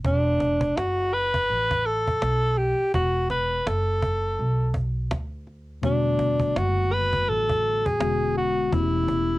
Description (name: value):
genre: hip hop, jazz-hop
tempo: 83 BPM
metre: 4/4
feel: swing 59% on 16ths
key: E dorian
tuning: A4 = 440 Hz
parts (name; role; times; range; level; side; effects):
- upright bass; bass; 0.0-9.4 s; E1 to D2; -27 LUFS; equal; none
- cajon; drums; 0.0-9.3 s; none; -29 LUFS; equal; cassette tape
- breathy alto saxophone; melody; 0.1-9.4 s; D4 to B4; -23 LUFS; equal; cassette tape
- mellow tine electric piano; accompaniment; 5.8-9.4 s; D3 to G4; -30 LUFS; left 8 dB; slow stereo tremolo, cassette tape
room: light reverb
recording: home recording on cassette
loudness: -21 LUFS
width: side -18 dB against mid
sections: 0.0-9.4 A section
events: none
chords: 0.0 Dadd9/E; 2.9 Bm7/E; 5.8 Em11; 8.0 E13; 8.7 A9/E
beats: | 0.05 0.77 1.49 2.22 | 2.94 3.66 4.38 5.11 | 5.83 6.55 7.28 8.00 | 8.72